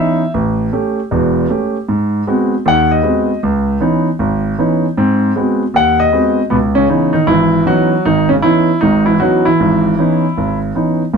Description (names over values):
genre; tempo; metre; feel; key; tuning
solo jazz; 156 BPM; 4/4; swing 64% on 8ths; C# minor; A4 = 440 Hz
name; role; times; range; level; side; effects
warm grand piano; solo; 0.0-11.2 s; E1 to F#5; -11 LUFS; equal; none
room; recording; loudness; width
light reverb; dark, warm production; -11 LUFS; side -6 dB against mid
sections
0.0-6.5 A section; 6.5-11.2 B section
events
grand piano solo 0.0-6.5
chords
0.3 A7; 1.9 G#7#9; 3.4 C#m9; 5.0 G#7#9; 6.5 C#m9